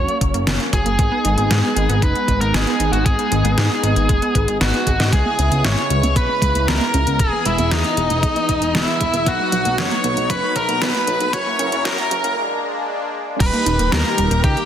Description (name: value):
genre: synthwave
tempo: 116 BPM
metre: 4/4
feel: straight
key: G# minor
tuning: A4 = 440 Hz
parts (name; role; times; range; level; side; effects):
- biting lead guitar; melody; 0.0-14.7 s; D#4 to C#5; -20 LUFS; equal; overdrive, tape echo
- soft supersaw; sustained chords; 0.0-14.7 s; C#3 to A#4; -25 LUFS; equal; phaser, sidechain pumping
- wide unison pluck; arpeggios; 0.0-14.7 s; F#3 to D#5; -26 LUFS; right 3 dB; tape echo
- chorused synth bass; bass; 0.0-14.6 s; D#1 to G#2; -21 LUFS; equal; sidechain pumping
- pop drum kit; drums; 0.1-14.7 s; crash cymbal, hi-hat, snare drum; -23 LUFS; equal; overdrive
- electronic kick drum; drums; 0.2-14.5 s; none; -19 LUFS; equal; overdrive
- string machine, violins; second line; 5.1-14.7 s; D#5 to C#6; -28 LUFS; equal; ensemble chorus, tape echo
room: moderate lush hall reverb, RT60 1.8 s, digital ambience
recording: dense, heavily limited modern master, high-pass filter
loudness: -16 LUFS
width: side -9 dB against mid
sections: 0.0-5.1 A section; 5.1-13.4 B section; 13.4-14.7 C section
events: drum fill 4.6-5.1; filter sweep on synth arpeggio sound 5.1-13.4; break 12.4-13.4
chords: 0.0 F#; 1.0 G#m; 5.1 C#m7; 7.2 Emaj7; 9.3 Bmaj7; 11.3 F#7; 12.4 A#7; 13.4 D#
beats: 0.47 | 0.99 1.51 2.02 2.54 | 3.06 3.58 4.09 4.61 | 5.13 5.64 6.16 6.68 | 7.20 7.71 8.23 8.75 | 9.27 9.78 10.30 10.82 | 11.34 11.85 12.37 12.89 | 13.40 13.92 14.44